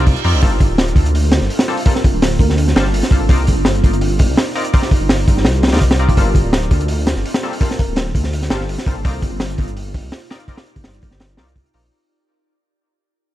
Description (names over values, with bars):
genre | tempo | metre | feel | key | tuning
drum and bass, jungle | 167 BPM | 4/4 | straight | unclear | A4 = 439 Hz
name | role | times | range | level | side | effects
band-passed chord stab | stabs | 0.0-11.8 s | G3 to D5 | -26 LUFS | left 2 dB | chorus, dub echo
dark detuned saw bass | bass | 0.0-11.9 s | D1 to F2 | -17 LUFS | equal | tube saturation
crunchy breakbeat drum kit | drums | 0.1-11.8 s | hi-hat, kick drum, snare drum | -15 LUFS | equal | none
bell-like FM electric piano | melody | 1.9-2.5, 7.6-8.8 s | G4 to Bb4 | -31 LUFS | right 1 dB | chorus, tremolo, dub echo
room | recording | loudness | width
small room ambience | dark, warm production | -13 LUFS | side -14 dB against mid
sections
0.0-11.9 A section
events
drop 0.0-11.9; fade-out 6.2-11.9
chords
0.4 Gm11; 3.3 Cm11; 6.2 Gm11; 9.0 Cm11